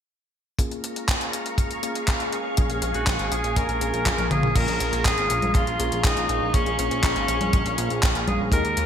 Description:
italo disco; 121 BPM; 4/4; straight; Bb minor; A4 = 439 Hz
string machine, full ensemble; sustained chords; 0.6-8.9 s; Ab4 to Eb6; -29 LUFS; right 1 dB; ensemble chorus
tine electric piano; stabs; 0.6-8.9 s; Ab3 to F5; -32 LUFS; left 2 dB; overdrive, medium stereo tremolo, low-pass filter
clean 12-bit digital drum machine; drums; 0.6-8.9 s; congas, crash cymbal, handclaps, hi-hat, toms; -27 LUFS; left 1 dB; overdrive, gated reverb
kick drum; drums; 0.6-8.6 s; -23 LUFS; equal
chorused synth bass; bass; 2.6-8.9 s; Ab1 to Eb2; -28 LUFS; equal
edgy alto saxophone; melody; 2.9-8.9 s; Db4 to Bb4; -26 LUFS; left 1 dB; ping-pong delay
moderate lush hall reverb, RT60 1.9 s, studio reverb; bright 1980s-style digital production; -21 LUFS; side -8 dB against mid
0.6-4.6 A section; 4.6-8.9 B section
filter sweep on tine electric piano 0.6-4.6; drum fill 4.1-4.6
0.6 Bbm7
| 0.59 1.09 1.58 2.08 | 2.58 3.07 3.57 4.06 | 4.56 5.05 5.55 6.05 | 6.54 7.04 7.53 8.03 | 8.53

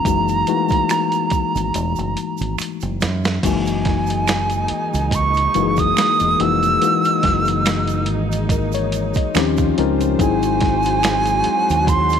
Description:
R&B, neo-soul; 71 BPM; 4/4; swing 54% on 16ths; A4 = 441 Hz
bright silver concert flute; melody; 0.0-12.2 s; G#5 to E6; -19 LUFS; right 3 dB; slapback echo
tine electric piano; accompaniment; 0.0-12.2 s; E3 to D#5; -21 LUFS; left 11 dB
deep dub fingered electric bass; bass; 0.1-12.2 s; E1 to F#2; -22 LUFS; right 2 dB
boom bap sampler-style drum kit; drums; 0.1-12.2 s; crash cymbal, hi-hat, kick drum, rim click, snare drum; -22 LUFS; right 2 dB
tube shaker and finger snaps; percussion; 0.1-12.2 s; -32 LUFS; right 16 dB
warm studio string section; sustained chords; 3.4-12.2 s; C#3 to B#4; -28 LUFS; right 3 dB
light reverb, studio reverb; 1960s-style stereo with parts hard left and right; -16 LUFS; side -8 dB against mid
0.0-3.4 A section; 3.4-12.2 B section
drum fill 1.7-3.4
0.1 F#13; 9.3 D#13; 10.2 G#7b13
| 0.05 0.90 1.74 2.59 | 3.43 4.28 5.12 5.97 | 6.81 7.66 8.50 9.35 | 10.19 11.04 11.88

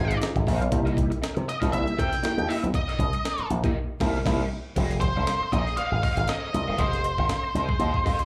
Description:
funk; 119 BPM; 4/4; swing 56% on 16ths; A4 = 441 Hz
octave-fuzz lead guitar; melody; 0.0-8.2 s; C5 to Ab5; -31 LUFS; equal; distortion, plate reverb, slapback echo
crunchy overdriven guitar; accompaniment; 0.0-8.2 s; E4 to F5; -39 LUFS; equal; wah, plate reverb, slapback echo
tonewheel organ; stabs; 0.0-4.4 s; Bb3 to Ab4; -33 LUFS; equal; chorus vibrato, slow rotary speaker, slapback echo, plate reverb
slap bass with an envelope filter; bass; 0.0-8.2 s; E1 to C3; -29 LUFS; equal
breakbeat sampler-style drum kit; drums; 0.1-8.2 s; crash cymbal, hi-hat, kick drum, snare drum; -30 LUFS; equal
light reverb; live gig heard through the venue's PA, club reverb; -26 LUFS; mono
0.0-4.8 A section; 4.8-8.2 B section
band accent 3.7-4.8
0.0 Dbmaj9 (rootless); 0.7 C7#9; 4.8 Fm7
0.21 | 0.72 1.22 1.73 2.23 | 2.74 3.24 3.75 4.25 | 4.76 5.27 5.77 6.28 | 6.78 7.29 7.80

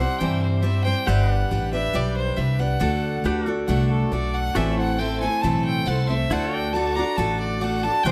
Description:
honky-tonk and classic country; 138 BPM; 4/4; straight; A4 = 440 Hz
clear fiddle; second line; 0.0-8.1 s; A4 to Bb5; -29 LUFS; equal
picked steel-string acoustic guitar; accompaniment; 0.0-8.1 s; A2 to C5; -28 LUFS; equal
pedal steel guitar; sustained chords; 0.0-8.1 s; E4 to E5; -34 LUFS; equal
upright bass; bass; 0.0-8.1 s; G1 to G2; -26 LUFS; equal
tonewheel organ; accompaniment; 5.0-7.9 s; E4 to D5; -34 LUFS; equal; slow rotary speaker, overdrive, chorus vibrato
little or no reverb; close, detailed microphones; -23 LUFS; mono
0.0-8.1 A section
fiddle solo 0.0-8.1
0.0 C; 1.1 G; 2.8 D; 4.6 Am; 6.3 D
0.20 0.64 | 1.07 1.51 1.95 2.38 | 2.82 3.25 3.69 4.13 | 4.56 5.00 5.43 5.87 | 6.31 6.74 7.18 7.62 | 8.05

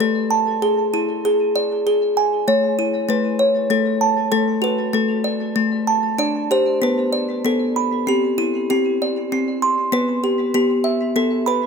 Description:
children's music, lullaby; 97 BPM; 3/4; rubato; G major; A4 = 440 Hz
music box; solo; 0.0-11.7 s; A3 to C6; -17 LUFS; equal; tape echo
light reverb; close, detailed microphones; -17 LUFS; side -5 dB against mid
0.0-11.7 A section
0.0 Gsus2; 0.6 E7; 2.5 A; 4.3 D; 6.2 G; 8.1 Cadd9; 9.9 Em
0.00 | 0.62 1.24 1.86 | 2.47 3.09 3.70 | 4.32 4.94 5.56 | 6.19 6.82 7.45 | 8.07 8.70 9.32 | 9.93 10.54 11.15

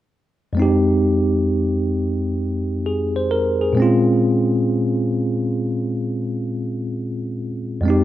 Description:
hip hop; 66 BPM; 4/4; swing 65% on 16ths; A4 = 439 Hz
bell-like tine electric piano; accompaniment; 0.5-8.0 s; F2 to C5; -17 LUFS; equal; medium stereo tremolo, low-pass filter
light reverb, digital ambience; rough home demo mix; -18 LUFS; side -13 dB against mid
0.6-8.0 A section
0.6 Fm7; 3.8 Bbm7
| 0.57 1.48 2.39 3.30 | 4.21 5.12 6.03 6.94 | 7.85

